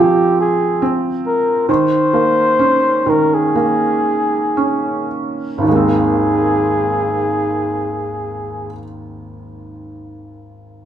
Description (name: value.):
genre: pop.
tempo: 53-72 BPM.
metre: 4/4.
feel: straight.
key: Ab major.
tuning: A4 = 440 Hz.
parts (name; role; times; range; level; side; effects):
warm flugelhorn; melody; 0.0-8.8 s; G4 to C5; -17 LUFS; left 1 dB; none.
felt-muted upright piano; accompaniment; 0.0-10.9 s; Ab1 to Db4; -17 LUFS; right 2 dB; none.
room: moderate large studio reverb, RT60 0.9 s.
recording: band playing live in one room.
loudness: -14 LUFS.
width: side -10 dB against mid.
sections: 0.0-5.7 A section; 5.7-10.2 B section.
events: slowing down 0.0-5.7.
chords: 0.0 Fm; 1.7 Eb7sus4; 5.7 Abadd9.